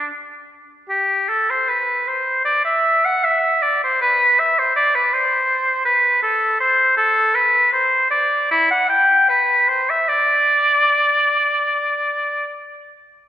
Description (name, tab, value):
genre	classical, baroque-style fantasia for unaccompanied oboe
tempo	78 BPM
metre	4/4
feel	uneven beats, rubato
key	unclear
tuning	A4 = 439 Hz
part	clear oboe	solo	0.0-12.5 s	E4 to G5	-15 LUFS	equal	none
room	wet concert hall reverb, RT60 2.3 s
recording	recorded in a church or concert hall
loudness	-14 LUFS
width	side -12 dB against mid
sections	0.9-13.3 A section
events	none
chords	none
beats	0.08 | 0.90 1.69 2.47 3.24 | 4.01 4.76 5.49 6.23 | 6.97 7.73 8.51 9.29 | 10.08 10.89 11.71 12.52